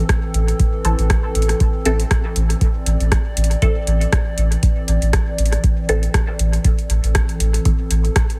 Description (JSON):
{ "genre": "dub techno", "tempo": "119 BPM", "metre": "4/4", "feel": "swing 56% on 16ths", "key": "A minor", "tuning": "A4 = 440 Hz", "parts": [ { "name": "warbly tape-like pad", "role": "sustained chords", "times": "0.0-8.4 s", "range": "E3 to D5", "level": "-29 LUFS", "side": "equal", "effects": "chorus, built-in reverb, sidechain pumping" }, { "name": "soft dub sub bass", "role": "bass", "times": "0.0-8.1 s", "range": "A1", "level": "-20 LUFS", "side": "equal", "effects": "sidechain pumping" }, { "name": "booming analog drum machine", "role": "drums", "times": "0.1-8.4 s", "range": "hi-hat, rim click", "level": "-27 LUFS", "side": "equal", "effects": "dub echo" }, { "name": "electronic kick drum", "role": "drums", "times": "0.1-8.3 s", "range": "none", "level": "-20 LUFS", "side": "equal", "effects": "none" }, { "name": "filtered dub chord stab", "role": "stabs", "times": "0.8-7.8 s", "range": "E3 to A4", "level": "-28 LUFS", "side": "equal", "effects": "phaser, sidechain pumping, dub echo" } ], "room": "little or no reverb", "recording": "echo-heavy mix", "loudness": "-18 LUFS", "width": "mono", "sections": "0.0-6.6 A section; 6.6-8.4 A section", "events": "none", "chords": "0.0 Am" }